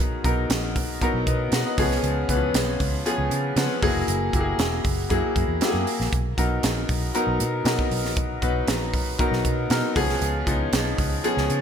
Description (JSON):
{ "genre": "polished 1980s jazz-funk pop", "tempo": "117 BPM", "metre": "4/4", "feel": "straight", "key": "B major", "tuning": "A4 = 440 Hz", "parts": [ { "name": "bright baby grand piano", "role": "accompaniment", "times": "0.0-11.6 s", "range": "E3 to F#5", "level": "-24 LUFS", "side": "left 2 dB", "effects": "wide subtle chorus" }, { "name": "vintage muted fingered electric bass", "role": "bass", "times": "0.0-11.6 s", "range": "E1 to C#3", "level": "-27 LUFS", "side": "equal", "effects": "none" }, { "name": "crisp fusion drum kit", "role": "drums", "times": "0.0-11.6 s", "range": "hi-hat, kick drum, snare drum", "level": "-25 LUFS", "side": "right 1 dB", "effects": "gated reverb" } ], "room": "moderate lush hall reverb, RT60 2.3 s", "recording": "bright 1980s-style digital production", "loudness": "-21 LUFS", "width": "side -8 dB against mid", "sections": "0.0-11.6 A section", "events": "none", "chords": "0.0 Bmaj7; 1.8 C#7; 3.8 F#9; 6.1 Bmaj7; 10.0 C#7" }